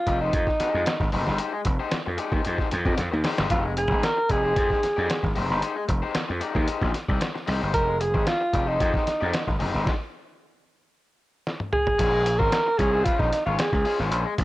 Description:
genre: funk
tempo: 113 BPM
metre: 4/4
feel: straight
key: F minor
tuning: A4 = 439 Hz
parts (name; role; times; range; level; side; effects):
- breathy alto saxophone; melody; 0.0-14.0 s; Eb4 to Bb4; -24 LUFS; right 1 dB; none
- raw garage guitar; accompaniment; 0.1-14.4 s; Ab3 to D5; -30 LUFS; left 5 dB; overdrive
- gritty slap bass; bass; 0.1-14.4 s; F1 to F2; -26 LUFS; equal; overdrive
- lo-fi sampler-style drum kit; drums; 0.1-14.4 s; crash cymbal, hi-hat, kick drum, snare drum, toms; -27 LUFS; equal; none
room: little or no reverb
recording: none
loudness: -22 LUFS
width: side -17 dB against mid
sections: 0.0-12.0 A section; 12.0-14.4 B section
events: drum fill 3.0-3.5, 11.5-12.0; stop 9.9-12.0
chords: 0.0 Fm9; 12.0 Bbm9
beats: 0.33 0.86 | 1.39 1.92 2.45 2.98 | 3.50 4.03 4.56 5.09 | 5.62 6.15 6.68 7.21 | 7.74 8.27 8.80 9.33 | 9.87 10.40 10.93 11.46 | 11.99 12.52 13.05 13.59 | 14.12

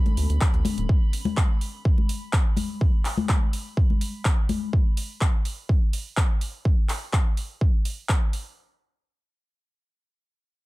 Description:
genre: progressive house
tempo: 125 BPM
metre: 4/4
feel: straight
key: unclear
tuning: A4 = 441 Hz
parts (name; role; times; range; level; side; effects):
- lush unison pad; sustained chords; 0.0-0.9 s; D3 to A4; -42 LUFS; right 1 dB; chorus, sidechain pumping
- drifting glass-harmonics texture; texture; 0.0-4.7 s; B5; -46 LUFS; left 1 dB; chorus, built-in reverb, sidechain pumping
- big-room dance drum kit; drums; 0.1-8.4 s; handclaps, hi-hat; -31 LUFS; equal; none
- congas; percussion; 0.1-4.6 s; none; -30 LUFS; left 5 dB; sidechain pumping on perc
- round analog bass; bass; 0.2-0.9 s; D1 to D2; -23 LUFS; equal; tube saturation, sidechain pumping
- electronic kick drum; drums; 0.4-8.2 s; none; -21 LUFS; equal; none
room: little or no reverb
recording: dark, warm production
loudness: -21 LUFS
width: side -20 dB against mid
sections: 0.0-8.6 A section; 8.6-10.7 B section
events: none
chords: 0.0 Bm7/D; 0.9 N.C.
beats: 0.41 | 0.89 1.37 1.85 2.33 | 2.81 3.29 3.77 4.25 | 4.73 5.21 5.69 6.17 | 6.65 7.13 7.61 8.09

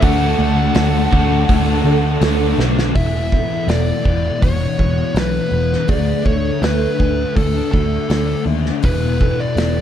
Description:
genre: rock, shoegaze and dream pop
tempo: 81 BPM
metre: 4/4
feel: straight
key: E mixolydian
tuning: A4 = 440 Hz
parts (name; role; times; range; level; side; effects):
- fuzz lead guitar; melody; 0.0-9.8 s; A4 to F#5; -23 LUFS; right 2 dB; distortion, analog delay
- hollow soft pad; sustained chords; 0.0-2.9 s; A4 to A5; -28 LUFS; right 5 dB; chorus
- fingerpicked twelve-string acoustic guitar; arpeggios; 0.0-9.8 s; F#4 to G#5; -27 LUFS; right 12 dB; ensemble chorus, analog delay
- cranked stack guitar; riff; 0.0-2.9 s; D3 to F#4; -22 LUFS; right 1 dB; overdrive
- electric guitar through a small old amp; riff; 0.0-9.8 s; D3 to B4; -37 LUFS; right 14 dB; none
- thick fuzz guitar; riff; 0.0-9.8 s; E2 to D4; -21 LUFS; left 9 dB; distortion, ensemble chorus
- vintage muted picked electric bass; bass; 0.0-9.8 s; E1 to D#2; -19 LUFS; right 1 dB; none
- loose indie drum kit; drums; 0.0-9.8 s; hi-hat, kick drum, snare drum; -20 LUFS; equal; none
room: small room ambience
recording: dark, warm production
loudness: -14 LUFS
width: side -10 dB against mid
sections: 0.0-3.0 A section; 3.0-9.8 B section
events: drum fill 2.6-3.0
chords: 0.0 Dmaj7; 3.0 E7sus4; 5.9 D; 8.8 E7sus4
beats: | 0.01 0.75 1.48 2.21 | 2.95 3.69 4.42 5.16 | 5.89 6.63 7.37 8.11 | 8.84 9.58

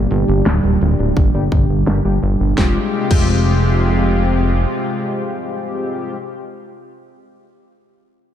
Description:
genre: synthwave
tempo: 85 BPM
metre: 4/4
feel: straight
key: F dorian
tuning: A4 = 439 Hz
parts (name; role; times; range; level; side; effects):
- lush unison pad; sustained chords; 0.0-6.2 s; Bb2 to G4; -20 LUFS; equal; chorus, sidechain pumping
- fat analog bass; bass; 0.0-4.7 s; D1 to G1; -16 LUFS; equal; sidechain pumping
- pop drum kit; drums; 0.1-3.3 s; crash cymbal, hi-hat, snare drum; -24 LUFS; equal; low-pass filter on hats, studio ambience, low-pass filter on snare, low-pass filter on cymbals
- chorused polysynth; stabs; 0.3-6.2 s; G2 to G4; -24 LUFS; left 2 dB; ping-pong delay
- electronic kick drum; drums; 1.2-3.3 s; none; -17 LUFS; equal; studio ambience
room: light reverb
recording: none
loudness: -14 LUFS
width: side -10 dB against mid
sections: 0.0-2.6 A section; 2.6-5.4 B section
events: filter sweep on drum 0.0-2.6; filter sweep on analog synth pad 0.0-2.6; filter sweep on analog polysynth 0.0-2.6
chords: 0.0 Gm; 2.6 Fmadd9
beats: 0.46 1.17 1.87 | 2.58 3.28 3.99 4.70

